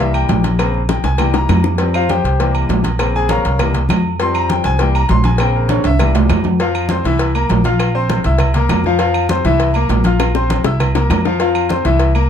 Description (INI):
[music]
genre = latin, salsa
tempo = 200 BPM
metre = 4/4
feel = straight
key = unclear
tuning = A4 = 441 Hz
[part]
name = bright concert grand piano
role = accompaniment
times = 0.0-12.3 s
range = Db3 to F6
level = -18 LUFS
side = left 4 dB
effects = none
[part]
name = upright bass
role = bass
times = 0.0-12.3 s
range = Bb1 to F2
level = -16 LUFS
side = right 1 dB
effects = none
[part]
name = agogo bells and timbales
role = percussion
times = 0.1-12.3 s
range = none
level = -22 LUFS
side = right 9 dB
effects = none
[part]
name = claves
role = percussion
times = 0.1-12.3 s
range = none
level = -30 LUFS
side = right 2 dB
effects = none
[part]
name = congas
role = percussion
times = 0.1-12.3 s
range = none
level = -21 LUFS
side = left 3 dB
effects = none
[part]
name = cowbell and bongos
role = percussion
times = 0.3-12.1 s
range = none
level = -22 LUFS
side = left 4 dB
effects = none
[sound]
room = light reverb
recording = dark, warm production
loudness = -12 LUFS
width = side -8 dB against mid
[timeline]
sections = 0.0-6.6 A section; 6.6-12.3 B section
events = grand piano solo 0.0-6.6; drum fill 0.9-1.8, 5.7-6.6, 10.2-11.4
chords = 0.0 C7; 0.6 Bbmadd9; 1.2 C7; 1.8 Fsus2; 2.4 C7; 3.0 Bbmadd9; 3.6 C7; 4.2 Fsus2; 4.8 C7; 5.4 Bbmadd9; 6.0 C7; 6.6 F5; 7.2 Bbsus2; 8.4 C7; 9.0 F5; 9.6 Bbsus2; 10.8 C7; 11.4 F5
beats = 0.29 | 0.59 0.89 1.19 1.49 | 1.79 2.10 2.40 2.70 | 3.00 3.30 3.60 3.90 | 4.20 4.50 4.80 5.10 | 5.40 5.70 6.00 6.30 | 6.60 6.90 7.20 7.50 | 7.80 8.10 8.40 8.70 | 9.00 9.30 9.60 9.90 | 10.20 10.50 10.80 11.10 | 11.40 11.70 12.00